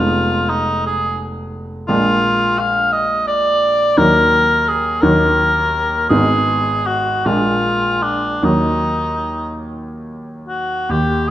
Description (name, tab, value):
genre	classical, romantic duo for cor anglais and grand piano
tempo	48-59 BPM (dotted quarters)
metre	6/8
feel	rubato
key	Eb minor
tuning	A4 = 441 Hz
part	mellow cor anglais	melody	0.0-11.3 s	D4 to F5	-16 LUFS	equal	none
part	bright grand piano	accompaniment	0.0-11.3 s	F1 to Eb4	-18 LUFS	right 1 dB	none
room	wet recital hall reverb, RT60 1.4 s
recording	none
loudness	-14 LUFS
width	side -13 dB against mid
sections	0.0-10.9 A section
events	none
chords	0.0 Fm7b5; 1.9 Bb7; 4.0 Ebm; 6.1 Abm; 7.3 Bb7; 8.4 Ebm